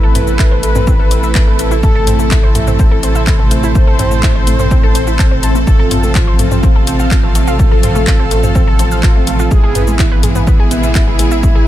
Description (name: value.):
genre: melodic techno.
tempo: 125 BPM.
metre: 4/4.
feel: straight.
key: A harmonic minor.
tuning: A4 = 440 Hz.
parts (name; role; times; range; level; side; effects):
fat analog lead; melody; 0.0-11.7 s; E4 to C5; -21 LUFS; equal; wide subtle chorus, sidechain pumping, ping-pong delay.
clear studio string section; sustained chords; 0.0-11.7 s; C3 to F5; -25 LUFS; left 1 dB; sidechain pumping.
warbly dusty pluck; arpeggios; 0.0-11.6 s; G#3 to A6; -22 LUFS; equal; chorus, sidechain pumping, ping-pong delay.
brassy analog pad; stabs; 0.0-11.7 s; E3 to A4; -21 LUFS; right 4 dB; chorus, sidechain pumping, ping-pong delay.
round analog bass; bass; 0.0-11.7 s; A1; -16 LUFS; equal; sidechain pumping.
swarming drone; drone; 0.3-11.7 s; A2 to C3; -26 LUFS; equal; none.
granular cloud pad; texture; 0.0-11.7 s; B3 to A5; -23 LUFS; left 1 dB; built-in reverb, sidechain pumping.
house drum kit; drums; 0.2-11.5 s; handclaps, hi-hat, shaker, toms; -20 LUFS; equal; none.
electronic kick drum; drums; 0.4-11.5 s; none; -12 LUFS; equal; none.
room: digital ambience.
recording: none.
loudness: -9 LUFS.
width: side -13 dB against mid.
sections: 0.0-11.7 A section.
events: none.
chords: 0.0 Am; 5.7 F/A; 9.5 E/A.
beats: 0.39 0.87 1.35 | 1.83 2.31 2.79 3.27 | 3.75 4.23 4.71 5.19 | 5.67 6.15 6.63 7.11 | 7.59 8.07 8.55 9.03 | 9.51 9.99 10.47 10.95 | 11.43.